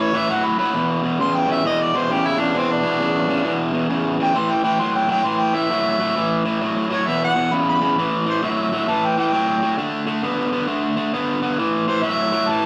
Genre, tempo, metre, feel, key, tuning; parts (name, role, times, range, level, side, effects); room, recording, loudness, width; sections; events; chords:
blues; 133 BPM; 4/4; swing 64% on 8ths; A mixolydian; A4 = 440 Hz
mellow harmonica; melody; 0.0-12.7 s; C4 to C6; -23 LUFS; equal; overdrive
cranked stack guitar; riff; 0.0-12.7 s; E2 to B3; -22 LUFS; equal; overdrive
wet large studio reverb, RT60 1.5 s; vinyl crackle; -20 LUFS; mono
0.0-8.0 A section; 8.0-12.7 B section
harmonica solo 0.0-8.0
0.0 A5; 0.7 E5; 4.4 A5; 7.1 E5; 8.0 A5; 9.8 D5; 11.6 A5